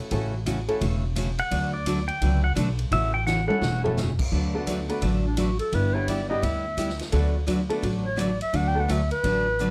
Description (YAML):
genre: country, western swing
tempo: 171 BPM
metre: 4/4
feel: swing 63% on 8ths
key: D major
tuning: A4 = 436 Hz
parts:
  - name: bright upright piano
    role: accompaniment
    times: 0.0-0.8, 3.5-8.9 s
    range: G3 to B4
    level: -32 LUFS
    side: equal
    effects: none
  - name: picked steel-string acoustic guitar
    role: accompaniment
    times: 0.1-9.7 s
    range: C#3 to B4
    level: -31 LUFS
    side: equal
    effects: none
  - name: upright bass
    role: bass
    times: 0.1-9.7 s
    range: E1 to D2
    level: -29 LUFS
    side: equal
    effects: none
  - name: swinging big-band drum kit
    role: drums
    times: 0.1-9.7 s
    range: crash cymbal, hi-hat, kick drum, ride cymbal, snare drum, toms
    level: -37 LUFS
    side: equal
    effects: none
  - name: pedal steel guitar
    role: melody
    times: 1.4-3.8 s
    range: D5 to G5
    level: -30 LUFS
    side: equal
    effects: none
  - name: breathy clarinet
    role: second line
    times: 5.3-9.7 s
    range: D4 to G5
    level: -29 LUFS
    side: equal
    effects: none
room: light reverb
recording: none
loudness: -25 LUFS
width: mono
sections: 0.0-4.3 A section; 4.3-9.7 A section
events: pedal steel guitar solo 0.0-4.3; drum fill 3.3-4.0; clarinet solo 4.3-9.7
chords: 0.0 A6; 1.5 D6; 2.9 A6; 4.3 D6; 5.7 G6; 7.1 D6